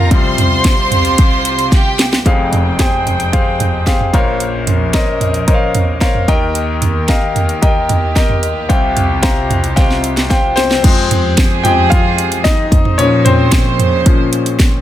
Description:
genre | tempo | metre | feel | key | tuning
piano-driven pop | 112 BPM | 4/4 | straight | F minor | A4 = 442 Hz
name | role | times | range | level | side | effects
warm studio violin section | second line | 0.0-2.2 s | G4 to C6 | -16 LUFS | equal | tape echo
bright concert grand piano | accompaniment | 0.0-14.8 s | F1 to Bb5 | -16 LUFS | left 3 dB | none
warm chamber string section | sustained chords | 0.0-14.8 s | C2 to G5 | -20 LUFS | right 2 dB | none
house drum kit | drums | 0.1-14.7 s | crash cymbal, hi-hat, kick drum, snare drum, toms | -13 LUFS | right 1 dB | none
room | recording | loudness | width
light reverb, small room ambience | dense, heavily limited modern master | -11 LUFS | side -12 dB against mid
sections
0.0-2.3 A section; 2.3-10.8 B section; 10.8-14.8 A section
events
grand piano solo 0.0-2.3, 10.8-14.8; drum fill 1.7-2.3, 9.8-10.8; grand piano fill 5.7-6.5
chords
0.1 Csus4; 2.3 Fmadd9; 4.1 Bbmadd9; 6.3 Eb; 8.7 Csus4; 10.8 Fmadd9; 12.7 Bbmadd9

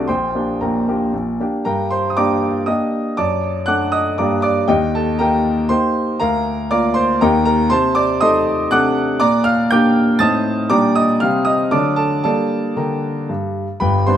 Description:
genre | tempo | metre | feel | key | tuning
classical-period piano sonatina | 119 BPM | 3/4 | straight | G minor | A4 = 440 Hz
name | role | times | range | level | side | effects
clear baby grand piano | solo | 0.0-14.2 s | G1 to A6 | -15 LUFS | equal | none
room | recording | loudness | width
moderate recital hall reverb, RT60 1.5 s | close, detailed microphones | -15 LUFS | side -10 dB against mid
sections
0.0-1.6 A section; 1.6-13.8 A section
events
none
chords
0.1 Gm/Bb; 1.6 Gm; 3.2 D/F#; 4.2 Gm; 4.7 Eb; 6.2 Bb/D; 7.2 Eb; 7.7 Adim/C; 8.7 D7/C; 9.2 Gm/Bb; 10.2 Adim; 10.7 Gm/Bb; 11.2 Cm; 11.7 D; 12.2 Gm

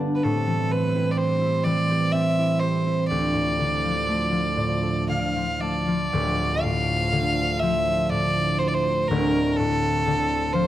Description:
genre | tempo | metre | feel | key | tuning
celtic folk, Celtic slow air | 56-64 BPM | 3/4 | rubato | D dorian, D minor from 6.1 s | A4 = 440 Hz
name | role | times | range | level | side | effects
concert harp | accompaniment | 0.0-10.7 s | D1 to A5 | -24 LUFS | equal | none
mellow brass ensemble | sustained chords | 0.0-10.7 s | D2 to C4 | -31 LUFS | right 2 dB | none
clear fiddle | melody | 0.2-10.7 s | A4 to F5 | -24 LUFS | equal | none
room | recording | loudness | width
moderate scoring stage reverb, RT60 1.9 s | dark, warm production | -21 LUFS | side -13 dB against mid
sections
0.0-6.1 A section; 6.1-10.7 B section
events
harp fill 0.0, 4.1-6.1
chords
0.2 Am7; 3.1 Dm; 9.1 D7(no3)

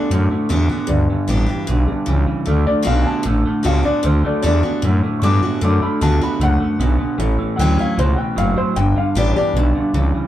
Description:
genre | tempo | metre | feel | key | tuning
rockabilly | 152 BPM | 4/4 | straight | D major | A4 = 440 Hz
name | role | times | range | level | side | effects
dark upright piano | accompaniment | 0.0-10.1 s | E3 to D6 | -23 LUFS | left 3 dB | none
picked steel-string acoustic guitar | accompaniment | 0.0-10.3 s | F#2 to G4 | -24 LUFS | left 2 dB | none
electric guitar through a small old amp | riff | 0.0-10.3 s | G2 to B3 | -20 LUFS | right 2 dB | none
growling FM bass | bass | 0.1-10.2 s | F#1 to G2 | -18 LUFS | equal | none
room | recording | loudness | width
light reverb | band playing live in one room | -15 LUFS | side -12 dB against mid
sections
0.0-10.3 A section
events
upright piano solo 0.0-10.3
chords
0.0 D; 0.9 G; 2.5 D; 7.2 A; 8.8 G

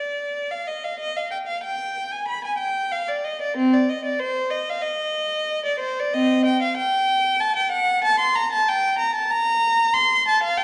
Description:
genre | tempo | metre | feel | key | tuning
classical, baroque-style suite movement for unaccompanied violin | 94 BPM | 4/4 | rubato | G minor from 6.1 s | A4 = 436 Hz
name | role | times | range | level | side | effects
rich violin | solo | 0.0-10.6 s | C4 to C6 | -22 LUFS | equal | none
room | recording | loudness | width
wet recital hall reverb, RT60 1.6 s | heard from further back in the room, nothing above 10.6 kHz | -22 LUFS | mono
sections
0.0-10.6 A section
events
none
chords
none

